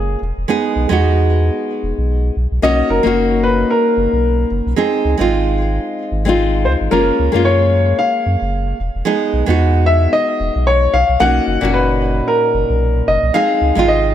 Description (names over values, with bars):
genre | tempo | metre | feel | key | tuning
sunset chillout | 112 BPM | 4/4 | swing 57% on 16ths | unclear | A4 = 440 Hz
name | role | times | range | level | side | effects
clear grand piano | melody | 0.0-14.1 s | G#4 to F#5 | -16 LUFS | left 1 dB | ping-pong delay
nylon-string guitar | accompaniment | 0.0-14.1 s | A#2 to G#4 | -17 LUFS | moving between left 5 dB and right 5 dB | auto-pan, ping-pong delay
warm sub bass | bass | 0.0-14.1 s | E1 to F#2 | -17 LUFS | equal | none
room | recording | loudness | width
light reverb, small room ambience | none | -13 LUFS | side -10 dB against mid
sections
0.0-14.1 A section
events
none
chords
0.2 Emaj9; 2.4 Bmaj9; 4.8 C#maj9 (rootless); 6.9 F#maj9; 8.8 Emaj9; 10.9 Bmaj9; 13.3 C#maj9